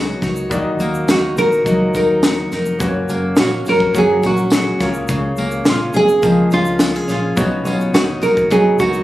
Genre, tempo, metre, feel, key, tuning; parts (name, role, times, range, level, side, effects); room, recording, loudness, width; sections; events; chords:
acoustic pop; 105 BPM; 4/4; straight; F# major; A4 = 440 Hz
nylon-string guitar; melody; 0.0-9.0 s; E#4 to A#4; -17 LUFS; right 1 dB; digital delay
picked steel-string acoustic guitar; accompaniment; 0.0-9.0 s; F#2 to G#4; -19 LUFS; left 1 dB
warm upright piano; accompaniment; 0.0-9.0 s; A#3 to D#5; -25 LUFS; left 2 dB
deep dub fingered electric bass; bass; 0.0-9.0 s; E#1 to D#2; -24 LUFS; equal
compact cocktail drum kit; drums; 0.2-9.0 s; kick drum, shaker, snare drum; -18 LUFS; equal
tambourine; percussion; 0.2-8.9 s; -35 LUFS; right 1 dB
light reverb; recorded on a phone in the room, club reverb; -13 LUFS; side -15 dB against mid
0.0-9.0 A section
0.0 Badd9; 0.5 D#m; 2.8 F#; 4.8 C#6; 7.4 Badd9